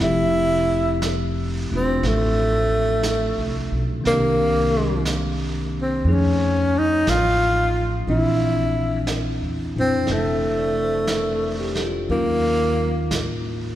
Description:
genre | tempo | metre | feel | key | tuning
jazz ballad | 60 BPM | 4/4 | swing 69% on 8ths | F major | A4 = 440 Hz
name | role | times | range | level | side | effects
breathy tenor saxophone | melody | 0.0-13.1 s | A3 to F4 | -21 LUFS | equal | none
bell-like tine electric piano | accompaniment | 0.0-13.8 s | Bb2 to D5 | -26 LUFS | left 1 dB | none
upright bass | bass | 0.0-13.8 s | E1 to F2 | -24 LUFS | equal | none
vintage brush drum kit | drums | 1.0-13.8 s | brushed snare drum, hi-hat, snare drum | -32 LUFS | right 2 dB | none
room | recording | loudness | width
wet church reverb, RT60 3.3 s | recorded in a church or concert hall | -18 LUFS | side -13 dB against mid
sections
0.0-13.8 A section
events
none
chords
0.0 Fmaj9; 4.0 Cm9; 6.1 F7alt; 8.1 Bbmaj9#11; 12.1 Ebm7

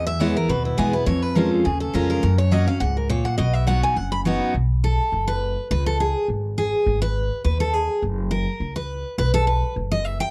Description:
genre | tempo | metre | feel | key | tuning
bluegrass | 207 BPM | 4/4 | swing 54% on 8ths | B major | A4 = 440 Hz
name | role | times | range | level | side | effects
picked steel-string acoustic guitar | melody | 0.0-4.2 s | E4 to B5 | -28 LUFS | equal | none
picked steel-string acoustic guitar | accompaniment | 0.0-10.3 s | E2 to G5 | -25 LUFS | equal | none
upright bass | bass | 0.0-10.2 s | F#1 to F#2 | -26 LUFS | equal | none
room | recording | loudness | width
little or no reverb | dry, close 1970s-style studio recording | -22 LUFS | mono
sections
0.0-4.5 A section; 4.5-10.3 B section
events
steel-string acoustic guitar solo 4.5-10.3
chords
0.0 E; 1.1 C#/E#; 2.2 F#; 3.4 B; 4.5 B5; 5.7 C#5; 6.9 G#m; 8.0 F#; 9.2 B5

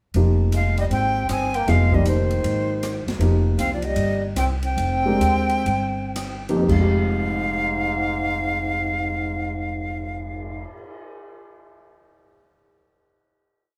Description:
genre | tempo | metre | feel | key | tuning
modal jazz | 110-158 BPM | 4/4 | swing 64% on 8ths | F minor | A4 = 440 Hz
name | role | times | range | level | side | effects
upright bass | bass | 0.1-10.6 s | F1 to Eb2 | -26 LUFS | equal | none
swinging big-band drum kit | drums | 0.1-10.9 s | crash cymbal, cymbal swell, hi-hat, kick drum, ride cymbal, rim click, snare drum | -35 LUFS | equal | none
dark baby grand piano | accompaniment | 0.2-10.8 s | F2 to Bb4 | -27 LUFS | equal | none
bright trombone | second line | 0.5-10.6 s | Ab2 to C4 | -30 LUFS | equal | none
breathy bright jazz flute | melody | 0.6-10.6 s | C5 to Ab5 | -28 LUFS | equal | plate reverb
room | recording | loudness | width
wet club reverb, RT60 0.5 s | heard from further back in the room | -22 LUFS | mono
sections
0.2-6.7 A section; 6.7-11.0 final chord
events
slowing down 3.2-6.7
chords
0.2 Fm9; 3.2 Cm/F; 6.7 Fm9

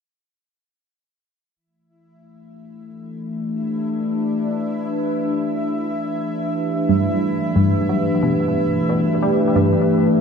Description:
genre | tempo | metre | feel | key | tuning
ambient, sequencer-driven space music | 90 BPM | 4/4 | straight | unclear | A4 = 443 Hz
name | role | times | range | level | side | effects
sweeping resonant pad | sustained chords | 1.6-10.2 s | E3 to B4 | -20 LUFS | left 1 dB | wide subtle chorus
bubbling stepped-filter texture | texture | 3.5-10.2 s | E4 to E5 | -30 LUFS | right 1 dB | chorus, built-in reverb
tight sequenced synth | riff | 6.9-9.7 s | G2 to G3 | -20 LUFS | right 1 dB | chorus, phaser, tape echo
room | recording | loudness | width
wet cathedral reverb, RT60 5.9 s | in a vast, echoing space | -18 LUFS | side -6 dB against mid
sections
1.6-10.2 A section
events
fade-in on synth texture 1.6-10.2; filter sweep on analog synth pad 1.6-10.2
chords
1.6 A5; 6.9 Gadd9

